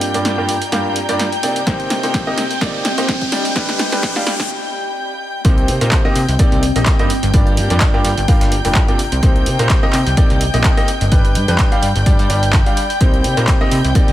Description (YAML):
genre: piano house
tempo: 127 BPM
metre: 4/4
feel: swing 55% on 16ths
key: C minor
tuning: A4 = 441 Hz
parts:
  - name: rich chamber violin section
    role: sustained chords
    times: 0.0-14.1 s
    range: G5 to G6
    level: -25 LUFS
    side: left 2 dB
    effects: sidechain pumping
  - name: clear baby grand piano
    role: riff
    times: 0.0-14.1 s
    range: G2 to G5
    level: -20 LUFS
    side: right 1 dB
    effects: sidechain pumping, low-pass filter, tape echo
  - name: punchy analog drum machine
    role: drums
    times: 0.0-14.1 s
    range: handclaps, hi-hat, snare drum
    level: -22 LUFS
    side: right 1 dB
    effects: none
  - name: riser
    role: sound effects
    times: 0.6-4.5 s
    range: none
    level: -26 LUFS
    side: equal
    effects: none
  - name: ethereal airy pad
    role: texture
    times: 0.0-14.1 s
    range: C4 to B5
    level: -26 LUFS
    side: left 1 dB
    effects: ensemble chorus, built-in reverb, sidechain pumping
  - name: electronic kick drum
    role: drums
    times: 1.7-14.1 s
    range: none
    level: -14 LUFS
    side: equal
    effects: none
  - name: plucky analog bass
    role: bass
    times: 5.4-14.1 s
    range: F1 to C3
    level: -17 LUFS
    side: equal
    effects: sidechain pumping
  - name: breakbeat sampler-style drum kit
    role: drums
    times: 5.4-14.1 s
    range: hi-hat, snare drum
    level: -33 LUFS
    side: equal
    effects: none
room: light reverb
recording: high-pass filter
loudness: -13 LUFS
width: side -14 dB against mid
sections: 0.0-5.4 A section; 5.4-14.1 B section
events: build-up 0.0-5.4; drum fill 0.0-4.5; riser 0.6-4.5; break 4.5-5.4; drop 5.4-14.1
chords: 0.0 Gm7; 1.4 Cm7; 3.3 G; 5.4 Cm7; 7.1 Gm7; 9.0 Cm7; 10.9 G; 13.0 Cm7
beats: 0.25 0.72 1.20 | 1.67 2.14 2.61 3.08 | 3.56 4.03 4.50 4.97 | 5.45 5.92 6.39 6.87 | 7.34 7.81 8.28 8.76 | 9.23 9.70 10.17 10.64 | 11.12 11.59 12.06 12.53 | 13.01 13.48 13.95